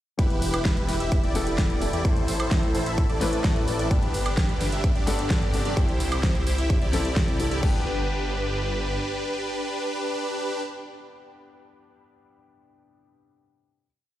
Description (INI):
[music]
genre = EDM, festival progressive house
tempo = 129 BPM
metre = 4/4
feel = straight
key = G major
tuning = A4 = 440 Hz
[part]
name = warm baby grand piano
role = accompaniment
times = 0.2-13.9 s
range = G2 to B4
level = -32 LUFS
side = left 3 dB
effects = sidechain pumping, dub echo
[part]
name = supersaw chords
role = riff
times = 0.2-10.6 s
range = D4 to E5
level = -28 LUFS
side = equal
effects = sidechain pumping, dub echo
[part]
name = wide detuned saw bass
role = bass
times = 0.2-9.0 s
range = E1 to E2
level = -29 LUFS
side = equal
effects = chorus, tube saturation, sidechain pumping
[part]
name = big-room dance drum kit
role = drums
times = 0.2-7.7 s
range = crash cymbal, hi-hat, snare drum, woodblock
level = -31 LUFS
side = right 1 dB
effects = overdrive, studio reverb
[part]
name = electronic kick drum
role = drums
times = 0.2-7.7 s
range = none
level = -24 LUFS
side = equal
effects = overdrive, studio reverb
[sound]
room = light reverb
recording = played on a big sound system in a bare room, stone room reverb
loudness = -22 LUFS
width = side -13 dB against mid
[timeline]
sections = 0.2-7.6 drop; 7.6-11.4 final chord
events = drop 0.2-7.6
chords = 0.2 Em; 2.0 Am; 3.9 G; 5.8 C; 7.6 G